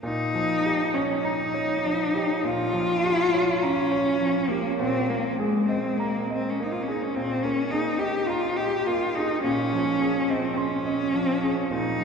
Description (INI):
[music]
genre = classical, impressionist duo for cello and grand piano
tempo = 49-54 BPM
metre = 4/4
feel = rubato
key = Bb dorian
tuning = A4 = 441 Hz
[part]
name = dark cello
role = melody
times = 0.0-12.0 s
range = Ab3 to G4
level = -24 LUFS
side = left 1 dB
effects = none
[part]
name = clear concert grand piano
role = accompaniment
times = 0.0-12.0 s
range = Bb2 to C6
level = -29 LUFS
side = right 2 dB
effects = none
[sound]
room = wet cathedral reverb, RT60 5.0 s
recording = recorded in a church or concert hall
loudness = -22 LUFS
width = side -5 dB against mid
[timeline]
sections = 0.0-12.0 A section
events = none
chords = 0.0 Bbm6; 4.8 Absus2/Bb; 9.4 Bbm11